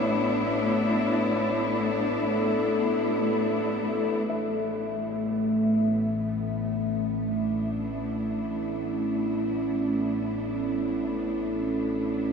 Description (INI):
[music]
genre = dark ambient drone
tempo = free time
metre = none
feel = none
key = unclear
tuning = A4 = 440 Hz
[part]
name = dark studio cello section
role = sustained chords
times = 0.0-12.3 s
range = A3 to E4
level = -29 LUFS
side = left 1 dB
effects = none
[part]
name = overtone-sweeping drone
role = drone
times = 0.0-12.3 s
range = A1 to A2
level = -26 LUFS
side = equal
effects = chorus, built-in reverb
[part]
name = quartz singing bowl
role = texture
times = 4.3-12.3 s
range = E5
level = -39 LUFS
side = left 5 dB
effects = none
[sound]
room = wet huge ambient reverb, RT60 8.0 s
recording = dreamy mix soaked in reverb, studio reverb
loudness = -24 LUFS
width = side -6 dB against mid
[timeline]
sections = 0.0-4.3 A section; 4.3-12.3 B section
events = filter sweep on synth drone 4.3-12.3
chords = 0.0 Asus2